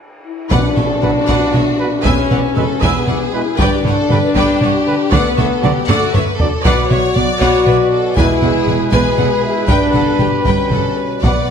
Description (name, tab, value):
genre	cinematic, epic orchestral film score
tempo	78 BPM (dotted quarters)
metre	6/8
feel	straight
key	B minor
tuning	A4 = 439 Hz
part	mellow French horn section	sustained chords	0.2-11.5 s	A3 to B4	-17 LUFS	left 3 dB	none
part	warm symphonic violin section	melody	0.5-11.5 s	E5 to G#5	-25 LUFS	left 4 dB	none
part	warm symphonic violin section	second line	0.5-11.5 s	F#4 to D5	-22 LUFS	left 3 dB	none
part	warm symphonic viola section	accompaniment	0.5-11.5 s	A4 to E5	-22 LUFS	right 1 dB	none
part	rich symphonic cello section	bass	0.5-11.3 s	E2 to D3	-22 LUFS	right 3 dB	none
part	warm symphonic double bass section	bass	0.5-11.3 s	E1 to D2	-22 LUFS	right 4 dB	none
part	solo taiko drums	drums	0.5-11.5 s	none	-18 LUFS	equal	none
part	tam-tam	percussion	0.5-2.5 s	none	-27 LUFS	left 2 dB	none
part	warm trombone section	sustained chords	1.0-11.5 s	B2 to G#3	-24 LUFS	right 4 dB	none
part	dark trumpet	stabs	1.0-11.5 s	B4 to D5	-23 LUFS	right 1 dB	none
part	timpani	percussion	11.2-11.5 s	B2	-24 LUFS	left 2 dB	none
room	moderate scoring stage reverb, RT60 1.6 s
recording	none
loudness	-12 LUFS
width	side -7 dB against mid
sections	0.5-11.5 A section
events	break 0.0-0.5; band accent 0.5-1.0; drum fill 5.9-6.6; timpani fill 11.2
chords	0.0 N.C.; 0.5 Bm; 2.0 E; 3.6 G; 5.1 D; 6.6 Bm; 8.2 E; 9.7 G